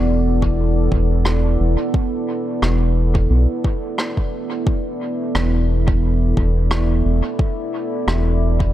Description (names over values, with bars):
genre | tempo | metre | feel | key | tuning
ambient dub | 88 BPM | 4/4 | swing 55% on 16ths | unclear | A4 = 440 Hz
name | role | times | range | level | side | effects
deep dark ambient pad | sustained chords | 0.0-8.7 s | B3 to F#5 | -22 LUFS | right 1 dB | chorus, built-in reverb
round analog bass | bass | 0.0-8.7 s | E1 to B1 | -17 LUFS | equal | none
electronic kick drum | drums | 0.4-8.7 s | none | -20 LUFS | equal | none
rim click | drums | 1.3-8.2 s | none | -27 LUFS | equal | dub echo
room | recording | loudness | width
small room ambience | echo-heavy mix | -16 LUFS | side -13 dB against mid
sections
0.0-8.7 A section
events
none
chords
0.0 Bm/E